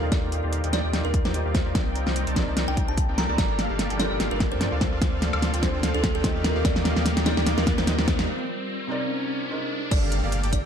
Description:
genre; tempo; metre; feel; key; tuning
future bass; 147 BPM; 4/4; swing 55% on 16ths, half-time; G minor; A4 = 441 Hz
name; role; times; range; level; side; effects
kalimba; melody; 0.0-10.7 s; A4 to Bb5; -32 LUFS; right 1 dB; sidechain pumping
felt-muted upright piano; accompaniment; 0.0-9.9 s; C3 to Eb5; -34 LUFS; right 1 dB; sidechain pumping, tape echo
shimmering ambient pad; sustained chords; 0.0-10.7 s; Bb2 to F4; -37 LUFS; left 2 dB; none
dense compressed supersaw; riff; 0.0-10.6 s; Bb3 to A5; -31 LUFS; equal; sidechain pumping, low-pass filter
saturated sub bass; bass; 0.0-10.6 s; G1 to G2; -28 LUFS; equal; sidechain pumping
riser and impact; sound effects; 3.1-10.7 s; none; -35 LUFS; left 1 dB; none
electronic kick drum; drums; 0.1-10.6 s; none; -25 LUFS; equal; overdrive
pop drum kit; drums; 0.1-10.6 s; crash cymbal, hi-hat, snare drum, woodblock; -26 LUFS; equal; overdrive
room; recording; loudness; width
moderate digital room reverb, RT60 1.1 s; dark, warm production; -22 LUFS; side -8 dB against mid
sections
0.0-9.9 A section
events
build-up 0.0-9.9; drum fill 0.0-8.3; filter sweep on supersaw synth 0.0-9.9; break 8.3-9.9; impact 9.9-10.7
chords
0.0 Ebmaj9; 1.8 Cm9; 3.4 Gm9; 4.8 Dm7; 6.4 Ebmaj9; 8.3 Cm9; 9.9 Gm9

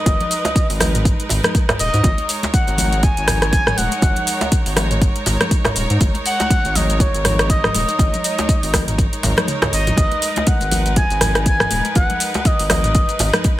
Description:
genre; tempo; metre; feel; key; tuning
afro house; 121 BPM; 4/4; swing 57% on 16ths; G# minor; A4 = 440 Hz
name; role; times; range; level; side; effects
expressive synth lead; melody; 0.0-13.6 s; C#5 to G#5; -22 LUFS; equal; chorus, cassette tape, dub echo
clear studio string section; sustained chords; 0.0-13.6 s; G#3 to C#5; -26 LUFS; right 2 dB; sidechain pumping
round analog bass; bass; 0.1-13.3 s; D#1 to G#2; -21 LUFS; equal; sidechain pumping
afro-pop drum kit; drums; 0.1-13.6 s; hi-hat, rim click, shaker, toms; -20 LUFS; equal; studio reverb
electronic kick drum; drums; 0.1-13.6 s; none; -17 LUFS; equal; studio reverb
congas; percussion; 0.1-13.6 s; none; -28 LUFS; left 3 dB; none
djembe; percussion; 0.1-13.3 s; none; -27 LUFS; right 2 dB; none
room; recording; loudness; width
digital ambience; none; -15 LUFS; side -15 dB against mid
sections
0.0-13.6 A section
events
drum fill 9.2-10.0; kick drops out 9.5-10.0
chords
0.0 G#m7

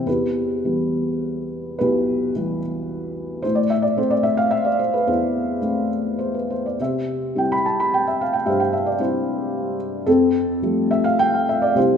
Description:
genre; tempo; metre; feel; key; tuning
classical, lyrical solo piano; 100-114 BPM; 3/4; rubato; unclear; A4 = 439 Hz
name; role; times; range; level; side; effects
felt-muted upright piano; solo; 0.0-12.0 s; B1 to B5; -18 LUFS; equal; none
room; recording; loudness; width
moderate scoring stage reverb, RT60 1.5 s; recorded in a church or concert hall; -19 LUFS; side -7 dB against mid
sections
0.1-12.0 A section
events
none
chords
0.1 Em; 3.4 Amadd9; 6.8 C; 10.1 Fadd9

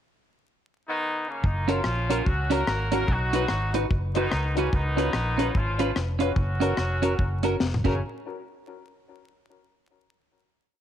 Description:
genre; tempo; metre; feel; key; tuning
ska; 146 BPM; 4/4; swing 60% on 8ths; F# major; A4 = 440 Hz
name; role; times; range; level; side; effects
clear horn section; melody; 0.9-8.0 s; C#3 to A#4; -29 LUFS; equal; none
vintage muted fingered electric bass; bass; 1.4-8.0 s; E#1 to C#2; -27 LUFS; equal; none
deep reggae drum kit; drums; 1.4-7.9 s; crash cymbal, hi-hat, kick drum, rim click, snare drum, toms; -28 LUFS; left 1 dB; none
clean electric guitar; accompaniment; 1.7-7.9 s; C#4 to B4; -29 LUFS; right 9 dB; none
honky-tonk upright piano; stabs; 1.7-8.0 s; C#4 to B4; -32 LUFS; left 9 dB; tape echo
room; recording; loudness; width
light reverb, small room ambience; 1960s-style stereo with parts hard left and right, vinyl crackle; -23 LUFS; side -10 dB against mid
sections
0.0-1.4 pickup bar; 1.4-8.0 A section; 8.0-9.7 final hit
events
drum fill 7.6-8.0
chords
0.0 A#madd11 (rootless); 1.4 F#; 3.1 B; 4.7 C#7; 6.4 F#; 8.0 N.C.

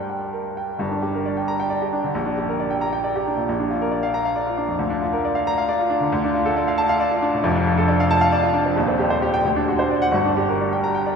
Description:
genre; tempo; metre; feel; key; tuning
classical, virtuoso piano study; 90 BPM (dotted quarters); 6/8; rubato; G minor; A4 = 439 Hz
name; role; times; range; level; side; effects
clear grand piano; solo; 0.0-11.2 s; Eb1 to Bb5; -19 LUFS; equal; none
room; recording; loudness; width
wet church reverb, RT60 3.7 s; minimal, uncompressed stereo recording; -19 LUFS; side -6 dB against mid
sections
0.8-11.2 A section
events
none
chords
0.0 Gm; 2.1 Gm/Bb; 3.5 Bb; 4.8 Bb/D; 6.1 Dm; 7.4 Dm/F; 8.8 Cm/Eb; 9.4 D7; 10.1 Gm

